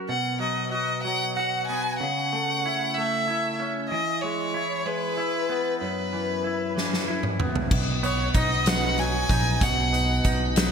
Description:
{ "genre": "six-eight pop ballad", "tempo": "63 BPM (dotted quarters)", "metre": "6/8", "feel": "straight", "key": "B major", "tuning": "A4 = 445 Hz", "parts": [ { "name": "direct-recorded clean electric guitar", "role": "accompaniment", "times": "0.0-10.7 s", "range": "F#2 to A#4", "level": "-29 LUFS", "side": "equal", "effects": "double-tracked left and right" }, { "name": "clear violin", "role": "melody", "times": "0.1-10.3 s", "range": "B4 to G#5", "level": "-26 LUFS", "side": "equal", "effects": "digital delay" }, { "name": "huge arena drum kit", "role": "drums", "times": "6.8-10.7 s", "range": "crash cymbal, hi-hat, kick drum, snare drum, toms", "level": "-25 LUFS", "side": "equal", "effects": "gated reverb" }, { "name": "tonewheel organ", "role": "sustained chords", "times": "7.7-10.7 s", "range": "B3 to F#5", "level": "-33 LUFS", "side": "right 1 dB", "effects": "slow rotary speaker" }, { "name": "upright bass", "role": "bass", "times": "7.7-10.7 s", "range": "A#1 to B1", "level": "-27 LUFS", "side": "equal", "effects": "none" } ], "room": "light reverb", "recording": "bright 1980s-style digital production", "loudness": "-23 LUFS", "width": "side -6 dB against mid", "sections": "0.0-7.7 A section; 7.7-10.7 B section", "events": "drum fill 6.8-7.7", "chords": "0.1 B5; 2.0 A/C#; 3.9 E; 5.8 F#7sus4; 7.7 B" }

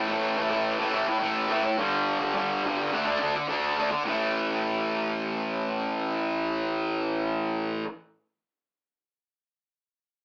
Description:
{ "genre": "rock", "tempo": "105 BPM", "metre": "4/4", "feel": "straight", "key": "unclear", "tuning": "A4 = 440 Hz", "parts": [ { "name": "fuzz guitar", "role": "solo", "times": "0.0-7.9 s", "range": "G2 to D4", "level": "-27 LUFS", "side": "equal", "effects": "distortion" } ], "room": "moderate studio reverb, RT60 0.5 s", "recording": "rough rehearsal-room recording, tube saturation, AM radio sound", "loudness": "-27 LUFS", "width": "mono", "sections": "0.0-4.1 A section; 4.1-6.3 B section", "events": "none", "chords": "0.0 A5; 1.8 G5; 2.9 D5; 4.1 A5" }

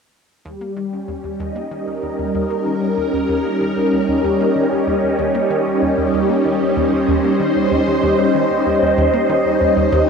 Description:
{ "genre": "ambient, sequencer-driven space music", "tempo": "95 BPM", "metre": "4/4", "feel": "straight", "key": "unclear", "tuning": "A4 = 439 Hz", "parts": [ { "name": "phased string machine", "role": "sustained chords", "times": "0.5-10.1 s", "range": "G3 to Eb5", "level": "-15 LUFS", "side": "equal", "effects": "ensemble chorus, phaser" }, { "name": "analog pluck", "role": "riff", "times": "0.5-10.0 s", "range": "Eb2 to Bb3", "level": "-26 LUFS", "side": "equal", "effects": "chorus, analog delay" } ], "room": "wet huge ambient reverb, RT60 9.1 s", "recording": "dreamy mix soaked in reverb", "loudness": "-15 LUFS", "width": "side -6 dB against mid", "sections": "0.5-10.1 A section", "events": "fade-in on synth arpeggio sound 0.5-10.1", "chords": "0.5 Eb7" }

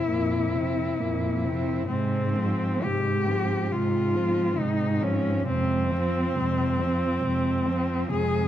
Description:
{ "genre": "classical, lyrical piece for cello ensemble", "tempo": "60-71 BPM", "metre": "4/4", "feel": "rubato", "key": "F minor", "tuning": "A4 = 440 Hz", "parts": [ { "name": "rich cello", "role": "melody", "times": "0.0-8.5 s", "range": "C4 to Ab4", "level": "-27 LUFS", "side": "left 2 dB", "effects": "none" }, { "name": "rich cello", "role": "second line", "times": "0.0-8.5 s", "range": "Ab3 to C4", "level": "-32 LUFS", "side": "right 7 dB", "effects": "none" }, { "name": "rich cello", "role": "accompaniment", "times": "0.0-8.5 s", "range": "Bb2 to F3", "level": "-30 LUFS", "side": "left 1 dB", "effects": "none" }, { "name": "rich cello", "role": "bass", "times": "0.1-8.5 s", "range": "F2 to Ab2", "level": "-28 LUFS", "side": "right 1 dB", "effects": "none" } ], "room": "wet recital hall reverb, RT60 1.6 s", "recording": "dark, warm production, vinyl crackle", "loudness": "-23 LUFS", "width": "side -11 dB against mid", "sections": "0.0-8.5 A section", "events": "none", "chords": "0.0 C7/F; 1.9 Fm/Ab; 5.5 Fm" }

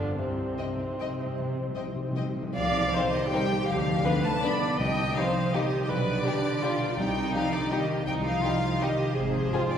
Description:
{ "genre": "classical, orchestral ballroom waltz", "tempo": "140-178 BPM", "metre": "3/4", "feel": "rubato", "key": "C minor", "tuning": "A4 = 441 Hz", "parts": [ { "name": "warm bassoon", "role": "accompaniment", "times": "0.0-2.3 s", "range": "C3 to D3", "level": "-37 LUFS", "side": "left 1 dB", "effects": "none" }, { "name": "warm chamber viola section", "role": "accompaniment", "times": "0.0-9.8 s", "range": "C4 to Eb5", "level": "-31 LUFS", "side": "right 2 dB", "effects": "none" }, { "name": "concert harp", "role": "arpeggios", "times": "0.0-9.8 s", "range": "G2 to B5", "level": "-34 LUFS", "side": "left 2 dB", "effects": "none" }, { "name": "warm chamber cello section", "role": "bass", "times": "0.0-9.8 s", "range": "G2 to B3", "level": "-33 LUFS", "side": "right 2 dB", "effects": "none" }, { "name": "warm chamber double bass section", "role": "bass", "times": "0.0-9.5 s", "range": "G1 to D2", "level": "-35 LUFS", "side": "right 1 dB", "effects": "none" }, { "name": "timpani", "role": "percussion", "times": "0.2-7.5 s", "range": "C3", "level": "-37 LUFS", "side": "equal", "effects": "none" }, { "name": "warm chamber violin section", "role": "melody", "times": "0.6-9.8 s", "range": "C5 to B5", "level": "-32 LUFS", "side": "left 4 dB", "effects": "none" }, { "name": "warm studio violin section", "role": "second line", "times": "0.6-9.6 s", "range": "C4 to Eb5", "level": "-38 LUFS", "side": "left 3 dB", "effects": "none" }, { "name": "tam-tam", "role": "percussion", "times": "2.6-4.0 s", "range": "none", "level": "-40 LUFS", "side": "right 1 dB", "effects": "none" }, { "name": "warm French horn section", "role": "sustained chords", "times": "2.9-9.7 s", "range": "D3 to Eb4", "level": "-36 LUFS", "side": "left 2 dB", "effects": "none" } ], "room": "wet church reverb, RT60 3.6 s", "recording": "recorded in a church or concert hall", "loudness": "-25 LUFS", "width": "side -8 dB against mid", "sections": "0.0-2.6 A section; 2.6-9.8 B section", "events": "timpani fill 0.2-2.6; band accent 2.6-2.9", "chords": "0.2 Cm; 3.7 Bdim/D; 4.8 Cm; 5.9 G/B; 7.0 Cm; 9.2 Fm/Ab" }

